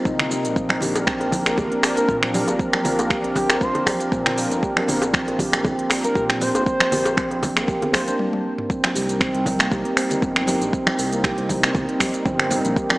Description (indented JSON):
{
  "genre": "afro house",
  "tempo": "118 BPM",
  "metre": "4/4",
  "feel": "swing 54% on 16ths",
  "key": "C minor",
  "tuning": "A4 = 440 Hz",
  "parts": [
    { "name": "warm analog pad", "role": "sustained chords", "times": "0.0-13.0 s", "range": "F3 to Bb4", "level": "-27 LUFS", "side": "left 1 dB", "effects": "chorus, sidechain pumping" },
    { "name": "handpan", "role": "arpeggios", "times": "0.1-13.0 s", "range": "Bb3 to G4", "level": "-24 LUFS", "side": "right 1 dB", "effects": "sidechain pumping, tape echo" },
    { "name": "smooth synth bass", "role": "bass", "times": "0.1-12.7 s", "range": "G1 to Bb2", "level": "-30 LUFS", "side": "equal", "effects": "sidechain pumping" },
    { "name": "afro-pop drum kit", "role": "drums", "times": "0.1-13.0 s", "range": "finger snaps, hi-hat, shaker, toms", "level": "-23 LUFS", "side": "equal", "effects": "small room ambience" },
    { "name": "electronic kick drum", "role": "drums", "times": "0.1-12.9 s", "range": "none", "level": "-25 LUFS", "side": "equal", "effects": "small room ambience" },
    { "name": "congas", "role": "percussion", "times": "0.1-13.0 s", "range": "none", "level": "-30 LUFS", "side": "equal", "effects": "none" },
    { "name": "djembe", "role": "percussion", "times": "1.0-8.0 s", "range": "none", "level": "-28 LUFS", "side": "left 1 dB", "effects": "none" },
    { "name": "expressive portamento lead", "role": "melody", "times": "2.0-8.1 s", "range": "G4 to C5", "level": "-25 LUFS", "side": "equal", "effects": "wide subtle chorus, tape echo" }
  ],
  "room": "light reverb",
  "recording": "small speaker sound",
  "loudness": "-18 LUFS",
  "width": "side -20 dB against mid",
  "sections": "0.0-8.7 A section; 8.7-13.0 A section",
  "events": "drum fill 8.2-8.7; stop 8.2-8.7",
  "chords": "0.0 Cm7; 0.6 Bb; 8.7 Cm7"
}